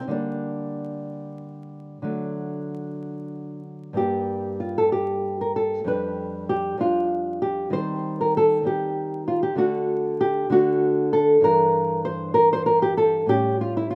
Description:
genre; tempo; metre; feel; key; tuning
classical, baroque-style dance for nylon-string guitar; 64 BPM (dotted quarters); 12/8; rubato; G minor; A4 = 439 Hz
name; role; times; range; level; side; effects
nylon-string guitar; solo; 0.0-13.9 s; F2 to C5; -24 LUFS; equal; slapback echo
room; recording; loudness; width
light reverb; recorded outdoors, with no room sound, vinyl crackle; -23 LUFS; mono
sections
0.0-13.9 A section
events
none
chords
0.1 Gm/D; 2.1 D; 4.0 Gm; 5.9 G7/F; 7.7 Cm/Eb; 9.6 D; 11.4 Em7b5/G; 13.3 A7

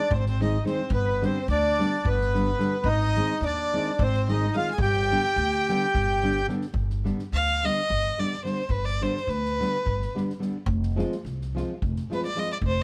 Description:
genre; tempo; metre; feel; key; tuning
balkan folk, Balkan wedding band; 215 BPM (eighths); 7/8; straight; G phrygian dominant; A4 = 441 Hz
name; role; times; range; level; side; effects
accordion; melody; 0.0-6.5 s; B3 to Ab4; -28 LUFS; equal; none
rich violin; second line; 0.0-12.8 s; B4 to Ab5; -32 LUFS; equal; none
upright bass; bass; 0.1-12.8 s; F1 to Eb2; -30 LUFS; equal; none
soft-mallet drum kit; percussion; 0.1-12.8 s; kick drum, snare drum; -36 LUFS; equal; none
nylon-string guitar; accompaniment; 0.4-12.5 s; D3 to F4; -32 LUFS; equal; none
room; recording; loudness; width
light reverb; close, detailed microphones; -26 LUFS; mono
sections
0.0-6.7 A section; 6.7-12.8 B section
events
violin solo 6.7-12.8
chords
0.0 Ab; 0.9 G; 2.8 Ab; 4.8 G; 10.7 Fm

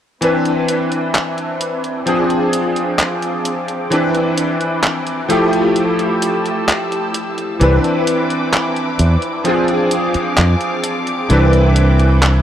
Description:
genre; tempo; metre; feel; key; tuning
vaporwave; 65 BPM; 4/4; straight; C major; A4 = 440 Hz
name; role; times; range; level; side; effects
bright electric grand piano; accompaniment; 0.2-12.4 s; E3 to B4; -16 LUFS; equal; ensemble chorus, tape echo
warm studio string section; sustained chords; 0.2-12.4 s; C4 to E6; -23 LUFS; equal; low-pass filter
detuned 8-bit digital drum machine; drums; 0.2-12.4 s; handclaps, hi-hat; -20 LUFS; equal; studio reverb
fingered electric bass; bass; 7.6-12.4 s; C2 to F2; -12 LUFS; equal; tube saturation
room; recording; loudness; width
moderate huge ambient reverb, RT60 8.7 s; none; -14 LUFS; side -10 dB against mid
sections
0.2-12.4 A section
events
filter sweep on string section 0.2-12.4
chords
0.2 Cmaj9; 2.1 Fm6; 3.9 Cmaj9; 5.3 Fmaj9; 7.6 Cmaj9; 9.5 Fm6; 11.3 Cmaj9

